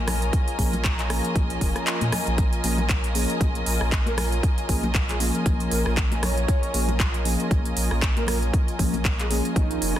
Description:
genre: deep house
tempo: 117 BPM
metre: 4/4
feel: swing 56% on 16ths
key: Bb minor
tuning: A4 = 440 Hz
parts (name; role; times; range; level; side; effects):
- warm analog pad; sustained chords; 0.0-10.0 s; F4 to Bb5; -34 LUFS; right 2 dB; chorus, sidechain pumping
- mellow FM electric piano; stabs; 0.0-10.0 s; F3 to Ab4; -30 LUFS; left 1 dB; chorus, phaser, cassette tape, sidechain pumping, ping-pong delay
- warm sub bass; bass; 0.0-9.9 s; F1 to Bb2; -27 LUFS; equal; sidechain pumping
- dark studio string section; texture; 0.0-10.0 s; F4 to Ab5; -32 LUFS; left 1 dB; sidechain pumping
- house drum kit; drums; 0.1-10.0 s; handclaps, hi-hat, rim click; -28 LUFS; equal; studio reverb
- congas; percussion; 0.1-9.7 s; none; -34 LUFS; left 2 dB; none
- electronic kick drum; drums; 0.3-9.7 s; none; -23 LUFS; equal; studio reverb
- breathy flute-like synth lead; melody; 4.1-10.0 s; Eb4 to Db5; -32 LUFS; right 1 dB; ensemble chorus, cassette tape, ping-pong delay
room: light reverb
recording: dense, heavily limited modern master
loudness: -21 LUFS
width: side -12 dB against mid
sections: 0.0-10.0 A section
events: kick drops out 1.9-2.4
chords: 0.0 Bbm7

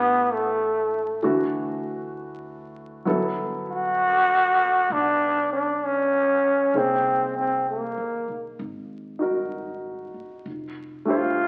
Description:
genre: jazz ballad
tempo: 65 BPM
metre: 4/4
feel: swing 66% on 8ths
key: unclear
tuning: A4 = 440 Hz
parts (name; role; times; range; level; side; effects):
- growling trombone; melody; 0.0-11.5 s; A3 to F#4; -23 LUFS; equal; none
- warm grand piano; accompaniment; 0.0-11.5 s; E3 to B#4; -30 LUFS; equal; none
- upright bass; bass; 0.0-11.5 s; F1 to D#2; -44 LUFS; equal; none
room: wet large studio reverb, RT60 1.3 s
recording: very old 78 rpm record, vinyl crackle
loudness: -23 LUFS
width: mono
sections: 0.0-11.5 A section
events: none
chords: 0.0 A9sus4; 1.2 Dadd9; 3.1 Gmaj9; 6.7 G#9; 10.5 Fadd9

